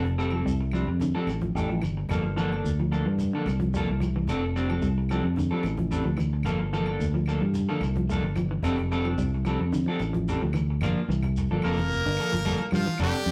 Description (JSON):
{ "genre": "afrobeat", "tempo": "110 BPM", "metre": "4/4", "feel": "straight", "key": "G dorian", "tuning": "A4 = 440 Hz", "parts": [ { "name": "clean electric guitar", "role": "stabs", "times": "0.0-13.3 s", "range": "F3 to A4", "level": "-33 LUFS", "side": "equal", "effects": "warbly pitch drift" }, { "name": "fingered electric bass", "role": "bass", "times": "0.0-13.3 s", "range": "F1 to G2", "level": "-29 LUFS", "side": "equal", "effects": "none" }, { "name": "cajon", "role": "drums", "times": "0.0-13.3 s", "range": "none", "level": "-41 LUFS", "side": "equal", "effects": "none" }, { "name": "shekere", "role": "percussion", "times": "0.2-13.3 s", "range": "none", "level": "-40 LUFS", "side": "equal", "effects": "none" }, { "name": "semi-hollow electric guitar", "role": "arpeggios", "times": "0.3-13.0 s", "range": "D3 to A3", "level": "-34 LUFS", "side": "equal", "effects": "none" }, { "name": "claves", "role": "percussion", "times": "0.3-13.1 s", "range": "none", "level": "-49 LUFS", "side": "equal", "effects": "none" }, { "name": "brilliant trumpet", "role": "melody", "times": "11.6-13.3 s", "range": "F4 to Bb4", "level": "-32 LUFS", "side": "equal", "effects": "none" }, { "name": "bright alto saxophone", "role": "second line", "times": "11.6-13.3 s", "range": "F3 to Bb3", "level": "-37 LUFS", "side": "equal", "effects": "none" } ], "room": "wet studio reverb, RT60 0.6 s", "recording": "rough rehearsal-room recording, tube saturation", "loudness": "-27 LUFS", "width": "mono", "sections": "0.0-10.8 A section; 10.8-13.3 B section", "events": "none", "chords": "0.0 F69; 2.1 Gm9; 4.3 F69; 6.5 Gm9; 8.6 F69; 10.8 Gm9", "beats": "0.46 1.01 1.55 | 2.10 2.65 3.19 3.74 | 4.29 4.83 5.38 5.92 | 6.47 7.01 7.56 8.11 | 8.65 9.19 9.74 10.28 | 10.82 11.36 11.90 12.45 | 12.99" }